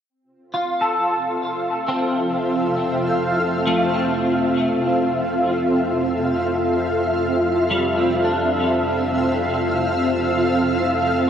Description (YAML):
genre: ambient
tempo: free time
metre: none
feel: none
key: F major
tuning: A4 = 440 Hz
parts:
  - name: granular cloud pad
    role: sustained chords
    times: 0.8-11.3 s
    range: C4 to F5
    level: -19 LUFS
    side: equal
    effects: built-in reverb, ensemble chorus
  - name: deep rumbling drone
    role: bass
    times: 2.5-11.3 s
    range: F2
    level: -35 LUFS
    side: equal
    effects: built-in reverb
  - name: clean electric guitar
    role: arpeggios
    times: 0.5-11.3 s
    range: G3 to A4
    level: -24 LUFS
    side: equal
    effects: ensemble chorus, diffuse ambient delay
room: wet huge ambient reverb, RT60 8.6 s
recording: dreamy mix soaked in reverb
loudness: -18 LUFS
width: side -8 dB against mid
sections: 0.1-11.3 A section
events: fade-in on synth drone 0.1-11.3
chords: 0.1 Fmaj7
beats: free time